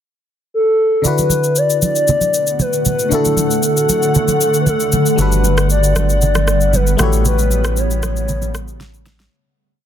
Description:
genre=amapiano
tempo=116 BPM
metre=4/4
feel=straight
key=D major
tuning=A4 = 441 Hz
part: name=hollow clarinet-like synth lead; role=melody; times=0.5-8.8 s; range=A4 to D5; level=-17 LUFS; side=equal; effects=chorus, tape echo
part: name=barking FM electric piano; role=accompaniment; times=1.0-9.3 s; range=D3 to C#5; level=-22 LUFS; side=left 4 dB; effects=chorus
part: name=granular cloud pad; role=sustained chords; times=2.5-9.3 s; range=C#3 to F#5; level=-20 LUFS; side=left 1 dB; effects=built-in reverb
part: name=electronic shaker, rim click and snare drum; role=drums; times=1.0-9.3 s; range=none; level=-21 LUFS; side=left 2 dB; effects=none
part: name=congas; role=percussion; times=1.0-9.2 s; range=none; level=-21 LUFS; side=right 3 dB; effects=none
part: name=warm sub bass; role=bass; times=5.2-9.3 s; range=G1 to A1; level=-16 LUFS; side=equal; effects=none
room=little or no reverb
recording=dense, heavily limited modern master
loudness=-13 LUFS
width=side -9 dB against mid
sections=0.0-1.0 pickup bar; 1.0-9.3 breakdown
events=fade-out 7.3-9.3; drum fill 8.8-9.3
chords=0.0 N.C.; 1.0 D6; 5.2 Gmaj7; 7.0 A13

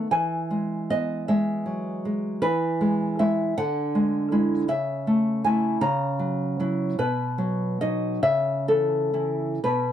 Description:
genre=romantic piece for solo classical guitar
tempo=41-54 BPM (dotted quarters)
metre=6/8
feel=rubato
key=unclear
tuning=A4 = 440 Hz
part: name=nylon-string guitar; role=solo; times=0.0-9.9 s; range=B2 to A#5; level=-22 LUFS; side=equal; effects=none
room=light reverb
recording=dry, close 1970s-style studio recording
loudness=-22 LUFS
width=side -10 dB against mid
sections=0.0-9.9 A section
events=none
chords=0.1 E; 3.6 E7/D; 4.7 A/C#; 5.8 F#7/C#; 7.0 B; 8.2 A/C#

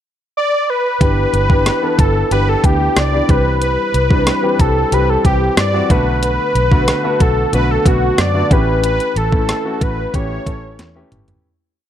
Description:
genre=1980s-style pop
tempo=92 BPM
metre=4/4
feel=straight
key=unclear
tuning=A4 = 440 Hz
part: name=wide unison lead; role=melody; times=0.4-11.1 s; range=F#4 to D5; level=-17 LUFS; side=equal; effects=none
part: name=clear concert grand piano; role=accompaniment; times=1.0-11.5 s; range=D3 to A4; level=-20 LUFS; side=left 1 dB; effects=none
part: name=vintage muted fingered electric bass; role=bass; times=1.0-11.4 s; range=G1 to G2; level=-18 LUFS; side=equal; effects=none
part: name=clean 12-bit digital drum machine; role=drums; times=1.0-11.4 s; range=hi-hat, kick drum, rim click, snare drum, toms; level=-15 LUFS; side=equal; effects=overdrive
room=light reverb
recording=dark, warm production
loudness=-12 LUFS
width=side -10 dB against mid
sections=0.0-1.0 pickup bar; 1.0-11.4 verse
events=fade-out 8.8-11.4; drum fill 10.8-11.4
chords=0.0 N.C.; 1.0 G6; 3.3 C; 5.9 Bm7; 8.5 A7

